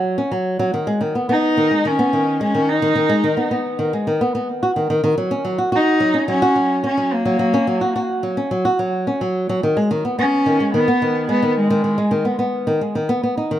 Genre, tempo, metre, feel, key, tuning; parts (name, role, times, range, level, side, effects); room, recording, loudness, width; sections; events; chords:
folktronica; 108 BPM; 4/4; straight; A4 = 440 Hz
flamenco guitar; arpeggios; 0.0-13.6 s; D#3 to F#4; -18 LUFS; equal; tape echo
dark cello; melody; 1.3-12.4 s; G#3 to D#4; -18 LUFS; equal; plate reverb, tape echo
wet studio ambience, RT60 0.5 s; -16 LUFS; side -12 dB against mid
0.0-13.6 A section
0.0 F#5; 0.7 G#m; 5.2 F#5; 9.6 G#m